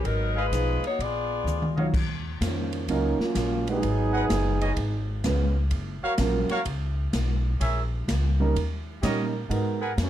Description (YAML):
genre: jazz, big band swing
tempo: 127 BPM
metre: 4/4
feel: swing 67% on 8ths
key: Eb minor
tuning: A4 = 442 Hz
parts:
  - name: clear saxophone section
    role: melody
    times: 0.0-1.8 s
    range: Gb3 to D5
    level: -28 LUFS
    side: left 3 dB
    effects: none
  - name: upright bass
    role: bass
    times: 0.0-10.1 s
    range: Gb1 to Bb2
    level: -27 LUFS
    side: equal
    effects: none
  - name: swinging big-band drum kit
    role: drums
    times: 0.0-10.1 s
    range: crash cymbal, hi-hat, kick drum, ride cymbal, snare drum, toms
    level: -31 LUFS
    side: left 1 dB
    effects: none
  - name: warm trumpet section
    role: stabs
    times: 0.3-9.9 s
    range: Gb4 to Gb5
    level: -29 LUFS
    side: right 1 dB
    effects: none
  - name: warm grand piano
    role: accompaniment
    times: 0.5-9.8 s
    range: F3 to Db5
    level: -28 LUFS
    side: right 4 dB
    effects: none
  - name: warm trombone section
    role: second line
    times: 2.4-5.1, 10.0-10.1 s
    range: Eb3 to Ab4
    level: -28 LUFS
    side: right 2 dB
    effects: none
room: moderate club reverb, RT60 0.5 s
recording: dark, warm production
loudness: -24 LUFS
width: side -12 dB against mid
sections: 0.0-1.9 A section; 1.9-10.1 B section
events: drum fill 1.5-1.9; trombone section solo 1.9-10.1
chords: 0.0 Fm7b5; 1.0 Bb7b9; 1.9 Ebm9; 3.8 Abm7; 4.8 Db7; 5.7 Gbmaj7; 7.6 Bbm7b5; 8.6 Eb7; 9.5 Abm9